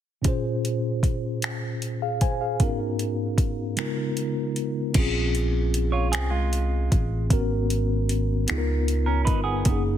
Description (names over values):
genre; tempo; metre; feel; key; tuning
slow six-eight R&B; 51 BPM (dotted quarters); 6/8; straight; Bb minor; A4 = 441 Hz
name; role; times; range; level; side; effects
mellow tine electric piano; accompaniment; 0.2-10.0 s; Ab2 to Ab5; -27 LUFS; left 1 dB; medium stereo tremolo
smooth R&B drum kit; drums; 0.2-9.8 s; crash cymbal, finger snaps, hi-hat, kick drum; -25 LUFS; equal; soft clipping on snare
fingered electric bass; bass; 5.0-10.0 s; Gb1 to Db2; -24 LUFS; equal; none
semi-hollow electric guitar; second line; 5.9-9.8 s; Ab3 to Db5; -29 LUFS; right 6 dB; phaser
room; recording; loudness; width
digital ambience; dense, heavily limited modern master; -22 LUFS; side -10 dB against mid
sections
0.2-5.0 A section; 5.0-10.0 B section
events
none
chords
0.2 Bbm9; 2.6 Abm11; 3.8 Db13; 5.0 Bbm9; 7.3 Abm11; 8.5 Db13